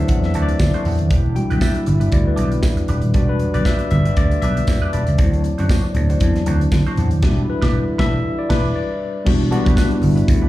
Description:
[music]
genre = disco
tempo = 118 BPM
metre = 4/4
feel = swing 56% on 16ths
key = E minor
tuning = A4 = 440 Hz
[part]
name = semi-hollow electric guitar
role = accompaniment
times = 0.0-10.5 s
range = D4 to D5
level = -32 LUFS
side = right 4 dB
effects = wah, wide subtle chorus, slapback echo
[part]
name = tine electric piano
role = accompaniment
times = 0.0-10.5 s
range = F#3 to G5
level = -22 LUFS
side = left 3 dB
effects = medium stereo tremolo, slapback echo
[part]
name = mellow French horn section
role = sustained chords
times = 0.0-10.5 s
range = C3 to F#4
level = -29 LUFS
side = right 2 dB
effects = none
[part]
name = vintage slap bass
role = bass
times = 0.0-10.5 s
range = D#1 to D3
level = -18 LUFS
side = equal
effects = none
[part]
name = modern studio drum kit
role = drums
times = 0.1-10.4 s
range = crash cymbal, hi-hat, kick drum, snare drum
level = -19 LUFS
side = equal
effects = none
[part]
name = congas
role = percussion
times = 0.1-10.5 s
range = none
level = -29 LUFS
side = left 2 dB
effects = none
[part]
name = tambourine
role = percussion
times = 0.6-9.9 s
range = none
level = -39 LUFS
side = right 5 dB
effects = none
[sound]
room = little or no reverb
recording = live gig heard through the venue's PA, club reverb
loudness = -15 LUFS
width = side -16 dB against mid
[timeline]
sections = 0.0-9.3 A section; 9.3-10.5 B section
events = tine electric piano solo 0.0-9.3; band accent 7.2-9.3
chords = 0.0 D7; 1.1 Em7; 5.2 D7; 7.2 Em7

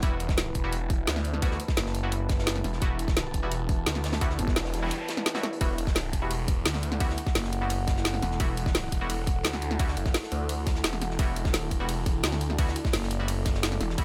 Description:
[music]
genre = dark technical drum and bass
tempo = 172 BPM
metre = 4/4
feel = straight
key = E minor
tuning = A4 = 440 Hz
[part]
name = deep dark ambient pad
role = sustained chords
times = 0.0-14.0 s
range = E4 to A5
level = -39 LUFS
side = equal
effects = chorus, built-in reverb, sidechain pumping
[part]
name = band-passed chord stab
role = stabs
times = 0.0-14.0 s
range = G3 to F#4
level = -39 LUFS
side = equal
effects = chorus, delay
[part]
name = phased detuned saw bass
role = bass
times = 0.0-14.0 s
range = E1 to D2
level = -33 LUFS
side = equal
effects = phaser, overdrive, sidechain pumping
[part]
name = crunchy breakbeat drum kit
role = drums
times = 0.0-14.0 s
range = hi-hat, snare drum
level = -42 LUFS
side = equal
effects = high-pass filter on hats, high-pass filter on snare, high-pass filter on room
[part]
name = drum and bass drum kit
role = drums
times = 0.0-14.0 s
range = hi-hat, ride cymbal, snare drum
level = -34 LUFS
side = equal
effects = none
[part]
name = electronic kick drum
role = drums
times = 0.0-14.0 s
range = none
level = -30 LUFS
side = equal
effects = none
[part]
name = growling FM bass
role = bass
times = 1.8-4.5, 7.4-8.2, 12.9-13.8 s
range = F#1 to G1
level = -32 LUFS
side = equal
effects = tube saturation
[part]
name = noise sweep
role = sound effects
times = 4.5-5.6 s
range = none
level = -41 LUFS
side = equal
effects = none
[sound]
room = light reverb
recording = none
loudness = -28 LUFS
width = mono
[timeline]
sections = 0.0-14.0 A section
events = noise sweep 4.5-5.6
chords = 0.0 Emadd9

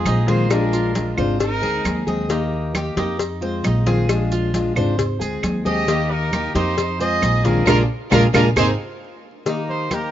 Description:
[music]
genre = latin, Cuban son and guajira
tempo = 134 BPM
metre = 4/4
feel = straight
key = Eb major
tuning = A4 = 440 Hz
[part]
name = warm trumpet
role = melody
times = 0.0-2.0, 5.7-10.1 s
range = Ab4 to Eb5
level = -24 LUFS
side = right 2 dB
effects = none
[part]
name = rich studio violin section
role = second line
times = 0.0-2.0, 5.7-8.7 s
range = Bb3 to Ab4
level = -27 LUFS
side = right 2 dB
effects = none
[part]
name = fingerpicked plugged-in steel-string acoustic guitar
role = accompaniment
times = 0.0-10.1 s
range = Eb3 to Ab4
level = -22 LUFS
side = left 3 dB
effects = none
[part]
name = Cuban tres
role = arpeggios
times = 0.0-10.1 s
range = Eb4 to Eb5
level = -27 LUFS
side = right 5 dB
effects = none
[part]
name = upright bass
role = bass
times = 0.1-8.7 s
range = Ab1 to F2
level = -22 LUFS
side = equal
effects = none
[part]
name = claves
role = percussion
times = 0.1-10.1 s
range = none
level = -26 LUFS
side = right 6 dB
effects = none
[part]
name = congas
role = percussion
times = 0.1-10.1 s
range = none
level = -27 LUFS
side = equal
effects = none
[part]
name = cowbell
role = percussion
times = 0.1-10.1 s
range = none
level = -27 LUFS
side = left 6 dB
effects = none
[part]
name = maracas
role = percussion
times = 0.1-10.1 s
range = none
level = -36 LUFS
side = right 4 dB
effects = none
[sound]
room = studio reverb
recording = rough home demo mix, vinyl crackle, nothing above 7.5 kHz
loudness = -17 LUFS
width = side -11 dB against mid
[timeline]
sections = 0.0-9.5 A section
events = band accent 7.7-9.5; drum fill 9.0-9.5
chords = 0.0 Fm7; 0.5 Bb7; 1.4 Abadd9; 2.3 Eb; 3.2 Fm7; 4.1 Bb7; 5.0 Ab; 5.9 Eb; 6.8 Fm7; 7.7 Bb7; 8.6 Abadd9; 9.5 Eb

